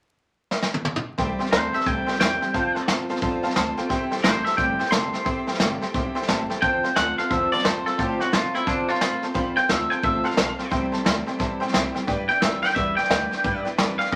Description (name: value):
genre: rockabilly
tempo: 176 BPM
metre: 4/4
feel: swing 63% on 8ths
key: C major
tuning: A4 = 440 Hz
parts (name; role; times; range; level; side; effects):
- vintage brush drum kit; drums; 0.5-14.2 s; hi-hat, kick drum, snare drum, toms; -27 LUFS; equal; none
- picked steel-string acoustic guitar; accompaniment; 1.2-14.2 s; C3 to C5; -31 LUFS; equal; none
- tack piano; accompaniment; 1.2-14.2 s; B4 to C6; -32 LUFS; equal; none
- upright bass; bass; 1.2-14.2 s; E1 to C3; -37 LUFS; equal; none
- twangy electric guitar; melody; 1.5-14.2 s; D4 to C6; -26 LUFS; equal; none
room: wet small room reverb, RT60 0.6 s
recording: vinyl crackle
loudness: -23 LUFS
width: mono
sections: 0.0-1.2 A section; 1.2-14.2 B section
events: drum fill 0.5-1.2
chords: 0.0 N.C.; 1.2 C6; 2.5 F6; 3.9 C6; 6.6 F6; 10.7 C6; 12.1 G6